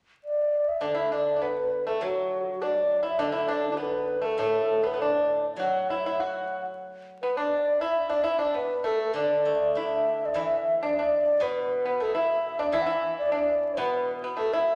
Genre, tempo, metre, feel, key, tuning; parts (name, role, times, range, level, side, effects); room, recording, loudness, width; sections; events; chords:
chinese traditional, Chinese chamber ensemble; 101 BPM; 2/4; rubato; D gong mode; A4 = 441 Hz
low xiao; melody; 0.2-14.8 s; D4 to F#5; -28 LUFS; equal
pipa; second line; 0.8-14.8 s; F#3 to F#4; -33 LUFS; equal
steel-string zither; accompaniment; 0.8-14.8 s; A2 to D4; -35 LUFS; equal
wet recital hall reverb, RT60 1.4 s; vinyl crackle, lossy compression artefacts; -26 LUFS; mono
0.8-10.4 A section; 10.4-14.8 B section